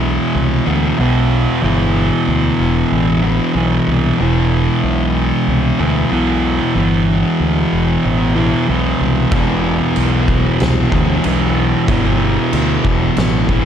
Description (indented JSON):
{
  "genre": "stoner and doom metal",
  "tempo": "94 BPM",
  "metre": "4/4",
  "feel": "straight",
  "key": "unclear",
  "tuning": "A4 = 441 Hz",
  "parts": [
    { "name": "thick fuzz guitar", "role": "riff", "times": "0.0-13.7 s", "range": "E2 to E3", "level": "-18 LUFS", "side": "left 9 dB", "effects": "distortion" },
    { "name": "thick fuzz guitar", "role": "riff", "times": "0.0-13.7 s", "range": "E2 to E3", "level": "-17 LUFS", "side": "right 8 dB", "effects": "distortion" },
    { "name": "growling fingered electric bass", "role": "bass", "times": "0.0-13.6 s", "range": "E1 to D2", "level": "-18 LUFS", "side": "equal", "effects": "overdrive" },
    { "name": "oversized low-tuned drum kit", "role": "drums", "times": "9.3-13.6 s", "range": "crash cymbal, kick drum, snare drum", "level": "-19 LUFS", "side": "equal", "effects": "none" }
  ],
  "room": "light reverb",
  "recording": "dark, warm production",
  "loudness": "-13 LUFS",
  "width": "side -8 dB against mid",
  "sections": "0.0-13.7 A section",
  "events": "none",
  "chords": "0.0 E5"
}